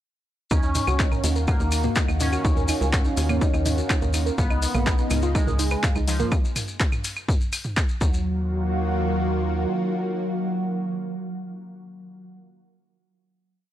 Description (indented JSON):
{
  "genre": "melodic techno",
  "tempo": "124 BPM",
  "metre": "4/4",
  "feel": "straight",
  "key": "Eb minor",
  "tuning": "A4 = 440 Hz",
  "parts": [
    { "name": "resonant sweep polysynth", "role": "melody", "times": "0.5-12.4 s", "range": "F3 to Db4", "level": "-28 LUFS", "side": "equal", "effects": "chorus, phaser, sidechain pumping, analog delay" },
    { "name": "lush unison pad", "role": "sustained chords", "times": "0.9-12.4 s", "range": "Db3 to Gb4", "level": "-32 LUFS", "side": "equal", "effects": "chorus, phaser, sidechain pumping" },
    { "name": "woody wave-folded pluck", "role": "arpeggios", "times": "0.5-8.5 s", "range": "Bb3 to Gb6", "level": "-30 LUFS", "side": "right 3 dB", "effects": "chorus, vintage 12-bit sampler grit, sidechain pumping, analog delay" },
    { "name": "tight sequencer bass", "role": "bass", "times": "0.5-9.7 s", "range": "Cb2 to Eb2", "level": "-25 LUFS", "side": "equal", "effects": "sidechain pumping" },
    { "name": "electronic kick drum", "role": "drums", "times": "0.5-8.1 s", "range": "none", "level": "-23 LUFS", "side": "equal", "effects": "none" },
    { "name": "punchy analog drum machine", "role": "drums", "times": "0.5-7.9 s", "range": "claves, handclaps, hi-hat, toms", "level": "-29 LUFS", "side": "equal", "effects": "overdrive" },
    { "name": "maracas", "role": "percussion", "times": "0.5-8.2 s", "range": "none", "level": "-34 LUFS", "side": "left 3 dB", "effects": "none" }
  ],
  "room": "little or no reverb",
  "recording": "dry, gritty hardware recording, transformer saturation",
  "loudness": "-21 LUFS",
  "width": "side -12 dB against mid",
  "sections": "0.5-8.3 drop; 8.3-12.1 final hit",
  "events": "drop 0.5-8.3",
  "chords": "0.5 Ebm7; 4.4 Db7; 8.0 Ebm"
}